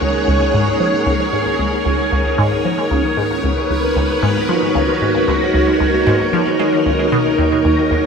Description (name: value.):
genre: ambient, sequencer-driven space music.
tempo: 114 BPM.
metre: 4/4.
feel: straight.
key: unclear.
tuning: A4 = 442 Hz.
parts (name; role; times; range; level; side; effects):
string machine, full ensemble; sustained chords; 0.0-8.1 s; Eb4 to Gb5; -16 LUFS; equal; ensemble chorus.
resonant blip pluck; riff; 0.0-8.1 s; Db2 to Ab3; -18 LUFS; equal; phaser, lush chorus, tape echo.
bubbling stepped-filter texture; texture; 0.0-8.1 s; Db5; -22 LUFS; right 2 dB; chorus, built-in reverb.
fat analog bass; bass; 7.4-8.1 s; Eb2; -32 LUFS; equal; none.
room: wet plate reverb, RT60 3.0 s.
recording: none.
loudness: -14 LUFS.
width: side -6 dB against mid.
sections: 0.0-7.4 A section.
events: filter sweep on synth arpeggio sound 0.0-7.4.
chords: 0.0 Dbsus4; 7.4 Ebm7.